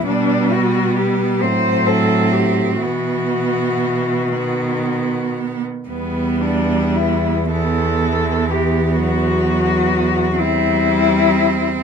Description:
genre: classical, lyrical piece for cello ensemble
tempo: 36-45 BPM (dotted quarters)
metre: 6/8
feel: rubato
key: E minor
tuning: A4 = 438 Hz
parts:
  - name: warm cello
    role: melody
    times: 0.0-11.8 s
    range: B3 to C5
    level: -19 LUFS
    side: left 3 dB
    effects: none
  - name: clear cello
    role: second line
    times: 0.0-11.8 s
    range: B3 to C4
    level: -22 LUFS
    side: right 8 dB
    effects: none
  - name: rich cello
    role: accompaniment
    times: 0.0-11.8 s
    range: D#3 to G3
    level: -22 LUFS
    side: left 3 dB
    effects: none
  - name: rich cello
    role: bass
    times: 0.0-11.8 s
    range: E2 to B2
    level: -21 LUFS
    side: right 2 dB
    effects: none
room: little or no reverb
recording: close, detailed microphones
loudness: -15 LUFS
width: side -6 dB against mid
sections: 0.0-11.8 A section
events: none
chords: 0.1 G/B; 1.4 Am; 2.8 Bsus4; 4.3 B; 5.9 Em; 9.0 B5/E; 10.4 C/E

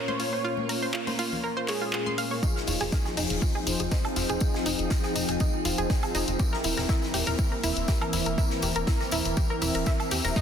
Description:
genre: progressive house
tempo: 121 BPM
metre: 4/4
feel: straight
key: F minor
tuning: A4 = 439 Hz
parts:
  - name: wide unison lead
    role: melody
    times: 0.0-2.3 s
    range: Ab4 to Db5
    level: -35 LUFS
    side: left 1 dB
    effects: sidechain pumping, dub echo
  - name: evolving wavetable pad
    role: sustained chords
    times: 0.0-10.4 s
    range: Bb2 to G5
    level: -34 LUFS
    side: right 1 dB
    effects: chorus, built-in reverb, sidechain pumping
  - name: soft supersaw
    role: stabs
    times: 0.0-10.4 s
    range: Ab2 to E5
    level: -33 LUFS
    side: left 1 dB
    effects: sidechain pumping, low-pass filter, dub echo
  - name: analog pluck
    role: arpeggios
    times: 0.1-10.4 s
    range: Eb4 to C6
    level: -33 LUFS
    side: right 2 dB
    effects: chorus, sidechain pumping, dub echo
  - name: congas and bongos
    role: percussion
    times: 0.1-2.2 s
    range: none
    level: -39 LUFS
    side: left 4 dB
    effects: sidechain pumping on perc
  - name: house drum kit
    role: drums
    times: 0.2-10.4 s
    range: handclaps, hi-hat, snare drum, woodblock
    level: -33 LUFS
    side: left 2 dB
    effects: small room ambience
  - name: electronic kick drum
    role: drums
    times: 2.4-10.4 s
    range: none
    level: -26 LUFS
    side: equal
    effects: overdrive, small room ambience
  - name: oversized low-tuned drum kit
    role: drums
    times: 2.4-10.4 s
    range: hi-hat, snare drum, tambourine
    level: -37 LUFS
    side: left 1 dB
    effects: sidechain pumping on hats, high-pass filter on hats, small room ambience, high-pass filter on snare, sidechain pumping on perc, high-pass filter on perc, high-pass filter on room
  - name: tambourine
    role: percussion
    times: 2.4-10.4 s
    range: none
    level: -38 LUFS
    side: left 3 dB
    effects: none
  - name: plucky analog bass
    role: bass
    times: 2.7-10.3 s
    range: E1 to E2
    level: -32 LUFS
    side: equal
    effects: tube saturation, sidechain pumping
room: light reverb, small room ambience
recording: dense, heavily limited modern master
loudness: -24 LUFS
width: side -8 dB against mid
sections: 0.0-2.4 A section; 2.4-10.4 B section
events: build-up 2.4-10.4; filter sweep on supersaw synth 2.4-10.4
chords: 0.0 Bbmadd9; 2.4 Fm7; 6.4 C7/E

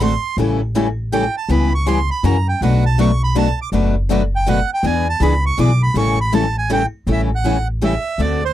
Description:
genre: acoustic string swing (jazz manouche)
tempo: 162 BPM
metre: 3/4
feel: swing 63% on 8ths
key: A mixolydian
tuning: A4 = 442 Hz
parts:
  - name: accordion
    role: melody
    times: 0.0-8.5 s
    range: C5 to D6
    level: -21 LUFS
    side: right 4 dB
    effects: none
  - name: picked steel-string acoustic guitar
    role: accompaniment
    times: 0.0-8.4 s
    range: B2 to A4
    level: -20 LUFS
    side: left 9 dB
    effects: none
  - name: picked steel-string acoustic guitar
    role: accompaniment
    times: 0.0-8.4 s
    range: B2 to B4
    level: -21 LUFS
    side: right 4 dB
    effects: none
  - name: upright bass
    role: bass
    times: 0.0-8.5 s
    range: F#1 to F#2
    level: -18 LUFS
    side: equal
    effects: none
room: little or no reverb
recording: dry, close 1970s-style studio recording, lossy compression artefacts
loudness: -15 LUFS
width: side -12 dB against mid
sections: 0.0-7.1 A section; 7.1-8.5 B section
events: accordion solo 0.0-7.1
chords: 0.4 A7; 1.5 C#m7b5; 2.2 F#7; 2.6 Bm7; 4.8 E7; 6.0 A7

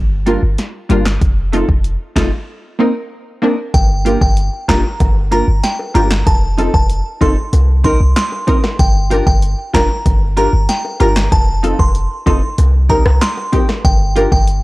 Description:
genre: dancehall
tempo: 95 BPM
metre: 4/4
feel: straight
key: G minor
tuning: A4 = 440 Hz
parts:
  - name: warm 808-style bass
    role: bass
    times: 0.0-14.6 s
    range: F1 to C2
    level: -14 LUFS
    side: equal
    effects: none
  - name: punchy chord stab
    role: accompaniment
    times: 0.3-14.3 s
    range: G3 to Bb4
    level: -18 LUFS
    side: equal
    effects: chorus, sidechain pumping
  - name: nylon-string guitar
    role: arpeggios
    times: 0.3-14.3 s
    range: C4 to Bb4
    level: -19 LUFS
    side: equal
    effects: none
  - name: deep house drum kit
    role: drums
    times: 0.3-14.6 s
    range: handclaps, hi-hat, kick drum, rim click, snare drum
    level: -16 LUFS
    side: equal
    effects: overdrive
  - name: glassy synth bell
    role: melody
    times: 3.7-14.4 s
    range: G5 to C6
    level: -20 LUFS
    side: right 1 dB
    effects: chorus, tremolo, tape echo
  - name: bongos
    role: percussion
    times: 3.7-14.5 s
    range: none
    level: -28 LUFS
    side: left 2 dB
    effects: none
room: little or no reverb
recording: dry, gritty hardware recording, cassette tape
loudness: -12 LUFS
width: side -19 dB against mid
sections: 0.0-3.7 A section; 3.7-14.6 B section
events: break 2.5-3.7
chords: 0.0 Gm7; 1.2 F7; 2.5 Cm7; 3.7 Gm7; 6.3 F7; 7.5 Cm7; 8.8 Gm7; 11.3 F7; 12.6 Cm7; 13.8 Gm7

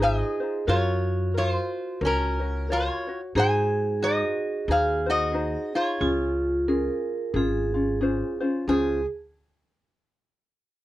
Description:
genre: Hawaiian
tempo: 90 BPM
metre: 4/4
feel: swing 59% on 8ths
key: Db major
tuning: A4 = 437 Hz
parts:
  - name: metal-body resonator slide guitar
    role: melody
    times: 0.0-9.1 s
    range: Db4 to Ab5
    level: -26 LUFS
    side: left 1 dB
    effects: none
  - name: vibraphone with hard mallets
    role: second line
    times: 0.0-9.1 s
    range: F4 to Bb4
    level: -29 LUFS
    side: right 4 dB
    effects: none
  - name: ukulele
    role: accompaniment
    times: 0.0-9.0 s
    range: Db4 to Db5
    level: -28 LUFS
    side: left 2 dB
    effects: none
  - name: upright bass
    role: bass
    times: 0.0-9.0 s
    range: Ab1 to Ab2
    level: -28 LUFS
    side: equal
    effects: none
room: light reverb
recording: worn, warbling old tape, cassette tape, warbly pitch drift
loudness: -23 LUFS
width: side -15 dB against mid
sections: 0.0-8.7 A section; 8.7-10.8 B section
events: none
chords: 0.0 Dbmaj9 (rootless); 0.7 Gbmaj7; 3.3 Ab7; 6.0 Dbmaj7

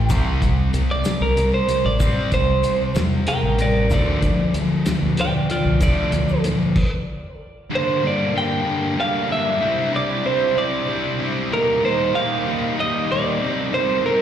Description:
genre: indie rock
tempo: 63 BPM (dotted quarters)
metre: 6/8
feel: straight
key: G minor from 7.7 s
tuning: A4 = 440 Hz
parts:
  - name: electric guitar through a small old amp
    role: melody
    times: 0.0-14.2 s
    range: F4 to G5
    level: -22 LUFS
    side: right 2 dB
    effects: slapback echo, tape echo
  - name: thick fuzz guitar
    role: riff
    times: 0.0-14.2 s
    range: G2 to E4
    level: -22 LUFS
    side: left 1 dB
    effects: distortion, slapback echo
  - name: growling fingered electric bass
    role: bass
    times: 0.0-6.4 s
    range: A1 to E2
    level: -21 LUFS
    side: equal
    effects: overdrive
  - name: cloth-damped thuddy drum kit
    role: drums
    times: 0.1-6.9 s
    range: crash cymbal, hi-hat, kick drum, snare drum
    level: -23 LUFS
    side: equal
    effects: none
  - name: egg shaker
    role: percussion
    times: 0.1-6.5 s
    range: none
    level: -45 LUFS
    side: left 2 dB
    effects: none
  - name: brassy analog pad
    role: sustained chords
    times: 7.7-14.2 s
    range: G3 to C5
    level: -30 LUFS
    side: left 1 dB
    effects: chorus
room: small room ambience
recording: live gig heard through the venue's PA, recital hall reverb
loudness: -18 LUFS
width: side -10 dB against mid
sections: 0.0-7.7 A section; 7.7-14.2 B section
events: clean electric guitar solo 0.0-7.7; stop 6.8-7.7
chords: 0.1 C5; 3.9 Dm; 7.7 Gm; 9.6 Cadd9; 11.5 Eb; 13.4 Cm7

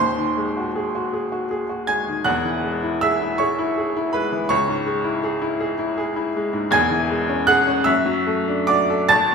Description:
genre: classical, romantic character piece for solo piano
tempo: 53 BPM (dotted quarters)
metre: 6/8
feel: rubato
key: C# minor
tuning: A4 = 439 Hz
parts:
  - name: bright upright piano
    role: solo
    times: 0.0-9.3 s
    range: D#1 to A6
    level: -18 LUFS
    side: equal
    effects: none
room: wet recital hall reverb, RT60 1.7 s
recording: minimal, uncompressed stereo recording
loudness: -18 LUFS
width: side -5 dB against mid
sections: 0.0-9.3 A section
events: none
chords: 0.0 G#7/D#; 2.2 C#m/E; 4.5 C#m; 6.7 C#m/E; 7.9 D/F#

